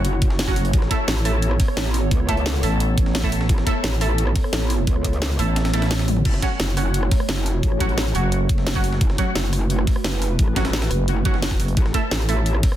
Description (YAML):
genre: dark technical drum and bass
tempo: 174 BPM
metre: 4/4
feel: straight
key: F# minor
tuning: A4 = 440 Hz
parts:
  - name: dark analog pad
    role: sustained chords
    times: 0.0-12.8 s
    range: A3 to C#5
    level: -29 LUFS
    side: right 2 dB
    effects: chorus, phaser, sidechain pumping
  - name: orchestra-hit-like synth stab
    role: stabs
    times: 0.0-12.3 s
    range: F#3 to A4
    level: -27 LUFS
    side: right 2 dB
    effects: built-in reverb, ping-pong delay
  - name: growling FM bass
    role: bass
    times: 0.0-11.8 s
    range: F#1 to A1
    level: -21 LUFS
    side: equal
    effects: none
  - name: metallic wobble bass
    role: bass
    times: 0.0-12.6 s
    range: F#1 to C#2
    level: -22 LUFS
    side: equal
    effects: chorus, sidechain pumping
  - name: breakbeat sampler-style drum kit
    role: drums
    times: 0.0-12.7 s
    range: hi-hat, snare drum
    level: -33 LUFS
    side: equal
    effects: none
  - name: drum and bass drum kit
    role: drums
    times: 0.0-12.8 s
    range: crash cymbal, hi-hat, rim click, snare drum, toms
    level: -26 LUFS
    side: equal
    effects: none
  - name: electronic kick drum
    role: drums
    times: 0.2-12.7 s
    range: none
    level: -20 LUFS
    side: equal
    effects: none
room: little or no reverb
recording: dense, heavily limited modern master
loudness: -18 LUFS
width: side -12 dB against mid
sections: 0.0-12.8 A section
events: kick drops out 5.6-6.3; drum fill 6.1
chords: 0.0 F#m; 0.7 Aadd9; 6.3 F#m; 11.8 Aadd9